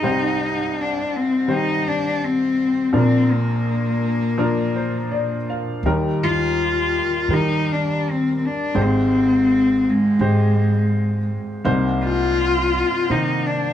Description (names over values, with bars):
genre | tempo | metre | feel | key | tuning
folk | 83 BPM | 4/4 | straight | unclear | A4 = 440 Hz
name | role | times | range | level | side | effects
warm cello | melody | 0.0-13.7 s | Ab3 to F4 | -20 LUFS | left 2 dB | none
warm upright piano | accompaniment | 0.0-13.7 s | Ab1 to F5 | -23 LUFS | equal | none
upright bass | bass | 5.8-13.7 s | Ab1 to Eb3 | -23 LUFS | equal | none
room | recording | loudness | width
light reverb | small room ambience | -17 LUFS | side -10 dB against mid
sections
0.0-13.7 A section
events
none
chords
0.0 Cm; 2.9 Bb; 5.8 Eb; 8.8 Abmaj7; 11.7 Cm7